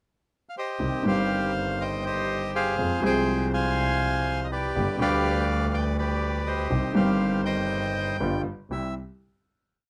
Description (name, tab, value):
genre	tango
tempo	121 BPM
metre	4/4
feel	rubato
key	C harmonic minor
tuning	A4 = 441 Hz
part	bandoneon	melody	0.5-8.9 s	G4 to Ab5	-30 LUFS	equal	none
part	bright upright piano	accompaniment	0.8-8.9 s	G1 to Ab4	-30 LUFS	equal	none
part	clear double bass	bass	0.8-8.9 s	G1 to F2	-32 LUFS	equal	none
room	light reverb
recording	none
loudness	-26 LUFS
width	mono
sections	0.0-0.8 pickup bar; 0.8-8.7 A section; 8.7-9.9 final chord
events	none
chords	0.0 C5; 0.8 Cm; 2.8 Fm; 4.7 G; 6.7 Cm; 8.2 G7; 8.7 C